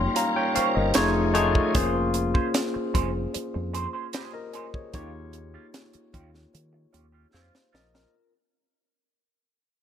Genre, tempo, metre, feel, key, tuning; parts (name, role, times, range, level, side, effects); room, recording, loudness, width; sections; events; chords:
lush 1970s-style soul; 75 BPM; 4/4; straight; A4 = 439 Hz
barky tine electric piano; accompaniment; 0.0-8.3 s; A3 to C6; -26 LUFS; left 2 dB; overdrive, wide subtle chorus
bright tonewheel organ; sustained chords; 0.0-1.7 s; F3 to Bb4; -32 LUFS; right 1 dB; fast rotary speaker, overdrive, chorus vibrato
fingered electric bass; bass; 0.0-8.0 s; F1 to Eb3; -29 LUFS; equal
electric guitar through a small old amp; riff; 0.2-8.0 s; Db4 to Db5; -33 LUFS; right 9 dB; wah, wide subtle chorus
tight funk drum kit; drums; 0.2-8.1 s; hi-hat, kick drum, snare drum; -27 LUFS; right 1 dB
light reverb, small room ambience; -22 LUFS; side -9 dB against mid
0.0-8.1 A section
fade-out 0.0-8.1; drum fill 7.3-8.1
0.0 Eb9; 1.0 F7alt; 1.8 Bbm9/F; 4.9 Eb9